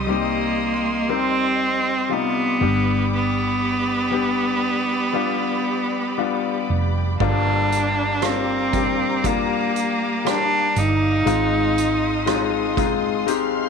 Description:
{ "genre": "pop ballad", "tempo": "59 BPM", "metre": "4/4", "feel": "straight", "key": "unclear", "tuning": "A4 = 443 Hz", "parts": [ { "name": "clear cello", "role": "melody", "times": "0.0-12.8 s", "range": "G3 to Eb4", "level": "-22 LUFS", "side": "right 2 dB", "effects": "none" }, { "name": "bright concert grand piano", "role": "accompaniment", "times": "0.0-13.7 s", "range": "G2 to D5", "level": "-24 LUFS", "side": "left 13 dB", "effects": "none" }, { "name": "rich studio string section", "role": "sustained chords", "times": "0.0-13.7 s", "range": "Ab3 to F6", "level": "-28 LUFS", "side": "right 1 dB", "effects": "none" }, { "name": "hollow-body short-scale fingered electric bass", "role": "bass", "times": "0.0-13.7 s", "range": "F1 to C2", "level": "-25 LUFS", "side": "right 3 dB", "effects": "none" }, { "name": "soft-mallet drum kit", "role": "drums", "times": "7.2-13.5 s", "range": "crash cymbal, hi-hat, kick drum, rim click", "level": "-27 LUFS", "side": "right 7 dB", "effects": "none" } ], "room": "light reverb, small room ambience", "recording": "1960s-style stereo with parts hard left and right", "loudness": "-18 LUFS", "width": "side -6 dB against mid", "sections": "0.0-7.2 A section; 7.2-13.7 B section", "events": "none", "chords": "0.0 Cm; 2.6 G; 7.2 Gm7; 11.3 Ab6" }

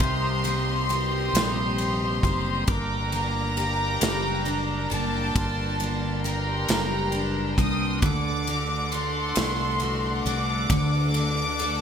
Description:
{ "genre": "six-eight pop ballad", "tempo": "45 BPM (dotted quarters)", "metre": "6/8", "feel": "straight", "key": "G harmonic minor", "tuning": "A4 = 439 Hz", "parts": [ { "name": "warm studio violin section", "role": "second line", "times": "0.0-11.8 s", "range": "A5 to Eb6", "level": "-29 LUFS", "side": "equal", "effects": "none" }, { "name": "picked steel-string acoustic guitar", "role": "accompaniment", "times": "0.0-11.8 s", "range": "C3 to A4", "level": "-29 LUFS", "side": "equal", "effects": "double-tracked left and right" }, { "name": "bright tonewheel organ", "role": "sustained chords", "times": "0.0-11.8 s", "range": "D4 to Eb6", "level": "-32 LUFS", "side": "equal", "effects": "slow rotary speaker" }, { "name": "fretless electric bass", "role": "bass", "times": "0.0-11.8 s", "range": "F#1 to D2", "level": "-29 LUFS", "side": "equal", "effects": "ensemble chorus" }, { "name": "modern studio drum kit", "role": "drums", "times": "0.0-11.8 s", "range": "kick drum, ride cymbal, snare drum", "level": "-30 LUFS", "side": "equal", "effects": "gated reverb" } ], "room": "light reverb, studio reverb", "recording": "bright 1980s-style digital production", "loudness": "-23 LUFS", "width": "side -8 dB against mid", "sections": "0.0-11.8 A section", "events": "none", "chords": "0.0 Cm7; 2.7 Gm; 8.0 D" }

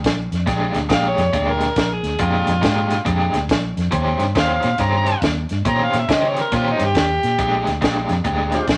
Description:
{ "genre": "electric blues shuffle", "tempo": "139 BPM", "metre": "4/4", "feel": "swing 64% on 8ths", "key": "Bb mixolydian", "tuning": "A4 = 445 Hz", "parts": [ { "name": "vintage muted fingered electric bass", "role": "bass", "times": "0.0-8.8 s", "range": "Bb1 to Db3", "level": "-25 LUFS", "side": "equal", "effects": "none" }, { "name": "compact cocktail drum kit", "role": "drums", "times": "0.0-8.8 s", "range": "hi-hat, kick drum, snare drum", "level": "-25 LUFS", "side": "equal", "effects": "none" }, { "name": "overdriven electric guitar", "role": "riff", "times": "0.5-8.6 s", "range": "Bb2 to C5", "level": "-24 LUFS", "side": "equal", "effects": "tremolo" }, { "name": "overdriven harmonica", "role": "melody", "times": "0.9-7.7 s", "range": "Eb4 to Bb5", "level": "-23 LUFS", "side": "equal", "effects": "none" }, { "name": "tonewheel organ", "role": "accompaniment", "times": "8.5-8.7 s", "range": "Ab3 to G4", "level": "-25 LUFS", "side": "equal", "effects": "slow rotary speaker, overdrive" } ], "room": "moderate studio reverb, RT60 0.7 s", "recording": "none", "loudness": "-19 LUFS", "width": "mono", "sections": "0.0-8.8 A section", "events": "none", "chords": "0.0 Bb13; 3.9 Eb6; 7.4 Bb13" }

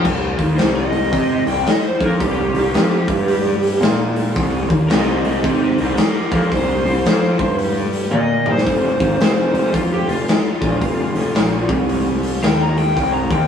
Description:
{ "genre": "blues rock power trio and southern rock", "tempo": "112 BPM", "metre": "4/4", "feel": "swing 63% on 8ths", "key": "unclear", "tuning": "A4 = 439 Hz", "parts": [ { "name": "lead guitar through a small cranked amp", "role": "melody", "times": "0.0-13.5 s", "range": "Eb4 to Bb5", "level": "-21 LUFS", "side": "equal", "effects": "overdrive, slapback echo" }, { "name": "fuzz picked electric bass", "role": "bass", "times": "0.0-13.5 s", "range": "F1 to C3", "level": "-18 LUFS", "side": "equal", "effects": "overdrive" }, { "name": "raw garage drum kit", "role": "drums", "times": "0.0-13.4 s", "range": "crash cymbal, hi-hat, kick drum, snare drum, toms", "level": "-19 LUFS", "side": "left 1 dB", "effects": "none" } ], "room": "moderate studio reverb, RT60 0.6 s", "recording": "rough rehearsal-room recording, tube saturation, small room ambience", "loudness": "-15 LUFS", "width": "side -8 dB against mid", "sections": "0.0-13.5 A section", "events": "lead electric guitar solo 0.0-13.5; drum fill 8.1-8.7", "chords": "0.0 Cm; 8.7 F5; 13.0 Cm7" }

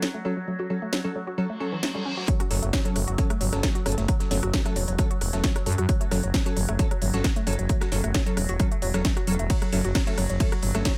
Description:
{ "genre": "driving peak-time techno", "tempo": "133 BPM", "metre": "4/4", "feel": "straight", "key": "F# phrygian", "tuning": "A4 = 440 Hz", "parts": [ { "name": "woody wave-folded pluck", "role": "riff", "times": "0.0-10.9 s", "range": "E3 to F#4", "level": "-34 LUFS", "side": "equal", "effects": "chorus, tube saturation, sidechain pumping, tape echo" }, { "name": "wavetable chord stab", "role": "stabs", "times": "0.0-10.9 s", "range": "F#3 to A4", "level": "-35 LUFS", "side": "equal", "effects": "sidechain pumping, tape echo" }, { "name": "overtone-sweeping drone", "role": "drone", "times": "0.0-11.0 s", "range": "F#3", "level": "-41 LUFS", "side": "equal", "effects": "chorus, built-in reverb, sidechain pumping" }, { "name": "techno drum kit", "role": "drums", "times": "0.0-10.9 s", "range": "hi-hat, ride cymbal, rim click, snare drum", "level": "-33 LUFS", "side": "equal", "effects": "overdrive" }, { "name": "reverse cymbal", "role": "sound effects", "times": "1.5-2.3 s", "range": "none", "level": "-37 LUFS", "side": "equal", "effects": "none" }, { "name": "breakbeat sampler-style drum kit", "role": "drums", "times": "2.3-11.0 s", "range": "hi-hat, snare drum", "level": "-42 LUFS", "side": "equal", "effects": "none" }, { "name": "electronic kick drum", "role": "drums", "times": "2.3-10.9 s", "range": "none", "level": "-27 LUFS", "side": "equal", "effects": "overdrive" }, { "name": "growling FM bass", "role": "bass", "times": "2.5-10.8 s", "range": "E1 to F#2", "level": "-29 LUFS", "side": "equal", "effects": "sidechain pumping" } ], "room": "digital ambience", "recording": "echo-heavy mix", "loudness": "-25 LUFS", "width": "mono", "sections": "0.0-2.3 A section; 2.3-11.0 B section", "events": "filter sweep on synth arpeggio sound 0.0-2.3; reverse cymbal 1.5-2.3; drop 2.3-11.0", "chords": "0.0 F#m" }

